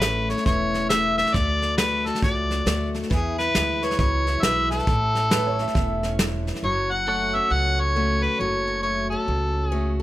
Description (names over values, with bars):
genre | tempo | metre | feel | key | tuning
honky-tonk and classic country | 136 BPM | 4/4 | swing 63% on 8ths | unclear | A4 = 440 Hz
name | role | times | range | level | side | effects
mellow harmonica | melody | 0.0-9.9 s | G#4 to F#5 | -23 LUFS | left 1 dB | none
picked steel-string acoustic guitar | accompaniment | 0.0-10.0 s | A2 to C#5 | -28 LUFS | left 2 dB | none
upright bass | bass | 0.0-10.0 s | E1 to E2 | -27 LUFS | right 1 dB | none
soft brush drum kit | drums | 0.0-6.6 s | hi-hat, kick drum, snare drum | -26 LUFS | equal | none
warm upright piano | second line | 5.3-6.5 s | B4 to E5 | -29 LUFS | right 8 dB | none
pedal steel guitar | sustained chords | 7.1-10.0 s | A4 to F#5 | -33 LUFS | right 3 dB | none
room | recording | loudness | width
light reverb | close, detailed microphones | -20 LUFS | side -15 dB against mid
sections
0.0-6.6 A section; 6.6-10.0 B section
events
none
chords
0.0 A; 1.3 D; 3.1 E; 4.9 A; 6.6 F#m